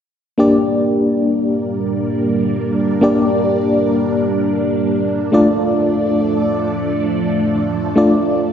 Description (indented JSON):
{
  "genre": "pop",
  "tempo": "free time",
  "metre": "none",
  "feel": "none",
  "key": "G minor",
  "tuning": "A4 = 440 Hz",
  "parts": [
    { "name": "FM electric piano with tremolo", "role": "accompaniment", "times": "0.4-8.5 s", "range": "A3 to D5", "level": "-15 LUFS", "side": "left 1 dB", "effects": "slapback echo" },
    { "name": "string machine, cellos", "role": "sustained chords", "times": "0.4-8.5 s", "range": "F3 to D5", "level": "-20 LUFS", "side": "right 2 dB", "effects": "phaser, ensemble chorus" }
  ],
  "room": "wet lush hall reverb, RT60 2.5 s",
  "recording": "big arena sound",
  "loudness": "-14 LUFS",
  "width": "side -8 dB against mid",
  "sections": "0.4-8.5 A section",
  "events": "none",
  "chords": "0.4 Gm; 5.3 Dm"
}